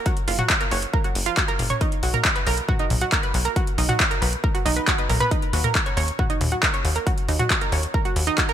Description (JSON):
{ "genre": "uplifting trance", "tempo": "137 BPM", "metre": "4/4", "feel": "straight", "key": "unclear", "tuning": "A4 = 439 Hz", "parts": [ { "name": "analog pluck", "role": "arpeggios", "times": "0.1-8.5 s", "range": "D#4 to C#5", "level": "-25 LUFS", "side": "right 4 dB", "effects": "chorus, sidechain pumping, ping-pong delay" }, { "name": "big-room dance drum kit", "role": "drums", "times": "0.1-8.5 s", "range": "handclaps, hi-hat, toms", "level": "-24 LUFS", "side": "left 1 dB", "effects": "overdrive, small room ambience" }, { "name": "electronic kick drum", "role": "drums", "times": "0.1-8.5 s", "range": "none", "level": "-24 LUFS", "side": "left 1 dB", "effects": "overdrive, small room ambience" }, { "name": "tight sequencer bass", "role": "bass", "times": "0.3-8.3 s", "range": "F#1 to D#2", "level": "-24 LUFS", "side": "left 1 dB", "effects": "sidechain pumping" } ], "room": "light reverb", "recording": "none", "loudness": "-19 LUFS", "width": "side -10 dB against mid", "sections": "0.0-8.5 A section", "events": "none", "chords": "0.0 F#maj7; 1.8 Bmaj7; 5.3 D#m7" }